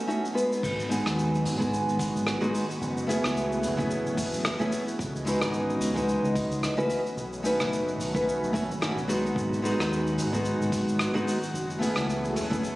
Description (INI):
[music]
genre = sunset chillout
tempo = 110 BPM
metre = 4/4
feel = swing 57% on 16ths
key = unclear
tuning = A4 = 440 Hz
[part]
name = airy breathy pad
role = sustained chords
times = 0.0-12.8 s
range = D#3 to D#5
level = -34 LUFS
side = equal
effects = chorus, phaser, shimmer reverb
[part]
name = nylon-string guitar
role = accompaniment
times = 0.1-12.8 s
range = G#3 to C#5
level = -27 LUFS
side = equal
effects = auto-pan, tape echo, shimmer reverb
[part]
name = vintage brush drum kit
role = drums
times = 0.1-12.8 s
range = crash cymbal, hi-hat, rim click, shaker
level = -34 LUFS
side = equal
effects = none
[part]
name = deep dub fingered electric bass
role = bass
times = 0.6-12.7 s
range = F#1 to D#2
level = -34 LUFS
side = equal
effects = tube saturation
[part]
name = electronic kick drum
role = drums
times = 0.6-12.6 s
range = none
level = -34 LUFS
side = equal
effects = none
[sound]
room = moderate digital room reverb, RT60 1.2 s, studio ambience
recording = recorded on a phone in the room, club reverb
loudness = -25 LUFS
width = side -18 dB against mid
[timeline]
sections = 0.6-12.8 A section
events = none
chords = 0.0 B7; 0.6 G#m7; 2.8 F#m11; 5.0 C#m11; 6.9 B7; 9.4 G#m7; 11.5 F#m11